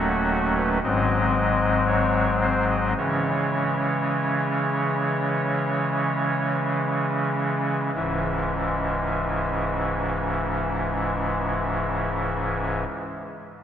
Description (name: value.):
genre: classical, chorale-style piece for pipe organ.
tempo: 44-60 BPM.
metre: 4/4.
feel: rubato.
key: C# minor.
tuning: A4 = 439 Hz.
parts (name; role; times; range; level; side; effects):
pipe organ, soft reed; solo; 0.0-12.8 s; C#1 to D#5; -22 LUFS; equal; none.
room: wet church reverb, RT60 3.4 s.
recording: none.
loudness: -22 LUFS.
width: side -9 dB against mid.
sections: 0.0-8.0 A section; 8.0-13.2 B section.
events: slowing down 0.0-8.0.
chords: 0.0 D#m7b5; 0.8 G#7; 3.0 C#m.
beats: 0.82 1.86 | 2.97 4.13 5.34 6.61 | 7.95 9.29 10.61 11.93.